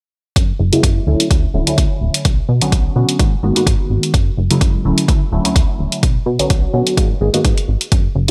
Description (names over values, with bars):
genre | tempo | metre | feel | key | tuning
filtered disco house | 127 BPM | 4/4 | swing 54% on 16ths | unclear | A4 = 440 Hz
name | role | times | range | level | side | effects
plucky analog bass | bass | 0.4-8.3 s | D1 to B2 | -20 LUFS | equal | tube saturation, sidechain pumping, low-pass filter
electronic hi-hat | drums | 0.4-8.3 s | none | -22 LUFS | equal | overdrive
electronic kick drum | drums | 0.4-8.0 s | none | -18 LUFS | equal | overdrive
funky polysynth comp | accompaniment | 0.7-8.3 s | C#3 to G#4 | -21 LUFS | equal | chorus, phaser, sidechain pumping, low-pass filter
room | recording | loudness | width
light reverb, digital ambience | bright 1980s-style digital production | -15 LUFS | mono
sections
0.4-8.3 A section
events
filter sweep 0.4-8.3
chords
0.4 F#9; 1.1 Dmaj7; 2.3 Bmadd9; 3.2 G#m9; 4.1 F#9; 4.8 Dmaj7; 6.0 Bmadd9; 7.0 G#m9